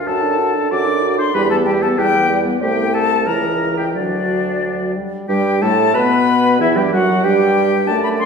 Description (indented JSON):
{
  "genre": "quick classical-period movement for wind quintet",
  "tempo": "94 BPM",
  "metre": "2/4",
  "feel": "rubato",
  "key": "G major",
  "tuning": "A4 = 440 Hz",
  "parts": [
    { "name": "warm oboe", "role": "second line", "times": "0.0-8.3 s", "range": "D4 to D5", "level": "-25 LUFS", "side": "left 2 dB", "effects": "none" },
    { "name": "dark clarinet", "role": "accompaniment", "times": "0.0-8.3 s", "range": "D4 to D5", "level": "-22 LUFS", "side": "right 5 dB", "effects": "none" },
    { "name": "bright concert flute", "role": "melody", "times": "0.1-8.3 s", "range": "D5 to D6", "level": "-19 LUFS", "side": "left 5 dB", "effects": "none" },
    { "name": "warm French horn", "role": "accompaniment", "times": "0.1-8.3 s", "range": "E3 to F#4", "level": "-20 LUFS", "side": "left 1 dB", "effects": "none" },
    { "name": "clear bassoon", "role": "bass", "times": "0.1-8.3 s", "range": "C2 to B2", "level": "-21 LUFS", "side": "right 3 dB", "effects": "none" }
  ],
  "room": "wet recital hall reverb, RT60 1.5 s",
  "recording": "heard from further back in the room",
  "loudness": "-14 LUFS",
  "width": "side -5 dB against mid",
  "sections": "0.0-5.3 A section; 5.3-8.3 B section",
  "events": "none",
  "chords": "0.1 D/F#; 1.4 Em; 2.6 Am7/C; 3.3 C#dim7; 3.9 D; 5.3 G; 6.6 Emadd9"
}